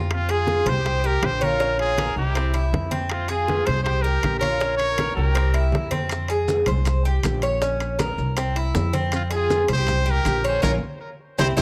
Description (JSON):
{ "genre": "latin, Cuban son and guajira", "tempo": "160 BPM", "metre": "4/4", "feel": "straight", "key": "F minor", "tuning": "A4 = 440 Hz", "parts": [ { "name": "Cuban tres", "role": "arpeggios", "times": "0.0-11.6 s", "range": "Bb3 to Db5", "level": "-27 LUFS", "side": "equal", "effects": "none" }, { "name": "upright bass", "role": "bass", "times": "0.0-11.6 s", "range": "Bb1 to F2", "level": "-26 LUFS", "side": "equal", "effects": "none" }, { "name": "bright trumpet", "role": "melody", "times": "0.1-5.7, 9.1-11.6 s", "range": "F4 to Db5", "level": "-28 LUFS", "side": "equal", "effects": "analog delay" }, { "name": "rich studio violin section", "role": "second line", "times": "0.1-5.7, 9.1-11.6 s", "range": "C4 to C5", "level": "-35 LUFS", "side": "equal", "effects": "plate reverb" }, { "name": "bongos", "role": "percussion", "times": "0.1-11.6 s", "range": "none", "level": "-32 LUFS", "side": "equal", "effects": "none" }, { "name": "congas", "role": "percussion", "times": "0.1-11.6 s", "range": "none", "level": "-33 LUFS", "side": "equal", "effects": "none" }, { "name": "timbales", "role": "percussion", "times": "0.1-11.6 s", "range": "none", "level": "-35 LUFS", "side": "equal", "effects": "none" }, { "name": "maracas", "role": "percussion", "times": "6.1-11.6 s", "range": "none", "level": "-41 LUFS", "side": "equal", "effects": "none" } ], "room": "moderate studio reverb, RT60 0.6 s", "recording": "none", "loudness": "-22 LUFS", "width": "mono", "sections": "0.1-11.6 A section", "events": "drum fill 10.6-11.6; band accent 10.6-11.6", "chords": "0.1 Fm; 0.9 C5; 1.6 Bbm; 2.4 C; 3.1 Fm; 3.9 C5; 4.6 Bbm; 5.4 C7; 6.1 Fm; 6.9 C5; 7.6 Bbm; 8.4 C; 9.1 Fm; 9.9 C5; 10.6 Bbm" }